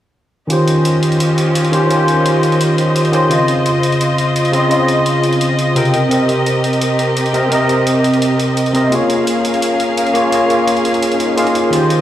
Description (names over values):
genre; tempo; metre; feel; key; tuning
liquid drum and bass; 171 BPM; 4/4; straight; Bb dorian; A4 = 439 Hz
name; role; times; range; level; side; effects
barky tine electric piano; accompaniment; 0.5-12.0 s; C3 to G5; -13 LUFS; equal; analog chorus, dub echo
muted chamber string section; sustained chords; 0.5-12.0 s; C4 to F5; -18 LUFS; left 1 dB; none
electronic hi-hat; drums; 0.5-12.0 s; none; -24 LUFS; right 1 dB; none
swell; sound effects; 11.2-11.7 s; none; -24 LUFS; left 3 dB; none
room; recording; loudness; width
moderate lush hall reverb, RT60 2.0 s; played on a big sound system in a bare room, large studio reverb; -12 LUFS; side -12 dB against mid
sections
0.5-12.0 A section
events
swell 11.2-11.7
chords
0.5 Eb13; 3.3 Dbmaj9; 5.9 Cm7; 8.9 Bbm7